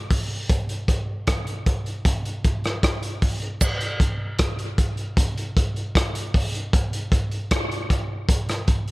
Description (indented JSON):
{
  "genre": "reggae",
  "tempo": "77 BPM",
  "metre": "4/4",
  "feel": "straight",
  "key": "none",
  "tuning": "none",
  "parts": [
    { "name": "crunchy breakbeat drum kit", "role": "drums", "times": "0.1-8.9 s", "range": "crash cymbal, hi-hat, kick drum, rim click", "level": "-21 LUFS", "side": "equal", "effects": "none" },
    { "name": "cabasa", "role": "percussion", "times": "3.6-3.8 s", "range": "none", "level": "-28 LUFS", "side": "right 8 dB", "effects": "none" }
  ],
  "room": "light reverb",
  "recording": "none",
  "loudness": "-21 LUFS",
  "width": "side -21 dB against mid",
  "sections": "0.0-3.6 A section; 3.6-8.9 A section",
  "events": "break 0.0-3.6; part muted 3.6-8.9",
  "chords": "none",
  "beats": "| 0.50 1.28 2.06 2.83 | 3.61 4.39 5.17 5.95 | 6.73 7.51 8.29"
}